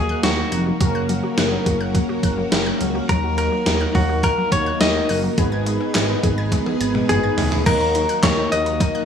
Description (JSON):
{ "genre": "synth-pop", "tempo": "105 BPM", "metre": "4/4", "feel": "straight", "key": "Eb minor", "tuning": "A4 = 442 Hz", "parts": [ { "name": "direct-recorded clean electric guitar", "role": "melody", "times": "0.0-9.1 s", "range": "Gb4 to Eb5", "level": "-23 LUFS", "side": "left 2 dB", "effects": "tape echo" }, { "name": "mellow synth brass", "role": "accompaniment", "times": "0.0-9.1 s", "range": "Bb3 to Cb5", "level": "-25 LUFS", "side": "equal", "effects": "chorus" }, { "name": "string machine, violins", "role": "sustained chords", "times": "0.0-9.1 s", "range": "Db3 to Ab4", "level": "-26 LUFS", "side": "equal", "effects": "ensemble chorus" }, { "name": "analog pluck", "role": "arpeggios", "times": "0.0-9.1 s", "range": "Gb3 to Ab6", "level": "-29 LUFS", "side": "left 4 dB", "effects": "chorus, tape echo" }, { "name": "smooth synth bass", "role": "bass", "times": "0.0-8.8 s", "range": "F1 to Eb2", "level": "-24 LUFS", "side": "equal", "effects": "none" }, { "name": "gated 80s digital drum machine", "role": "drums", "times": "0.2-8.9 s", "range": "crash cymbal, handclaps, hi-hat, kick drum, snare drum, toms", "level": "-21 LUFS", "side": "right 1 dB", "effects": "gated reverb, gated reverb snare" } ], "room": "light reverb", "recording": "studio ambience", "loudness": "-17 LUFS", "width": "side -8 dB against mid", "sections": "0.0-7.7 A section; 7.7-9.1 B section", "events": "drum fill 6.5-7.7", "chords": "0.0 Ebm; 0.8 Gb; 3.1 Ebm; 5.4 Abm; 7.7 Ebm" }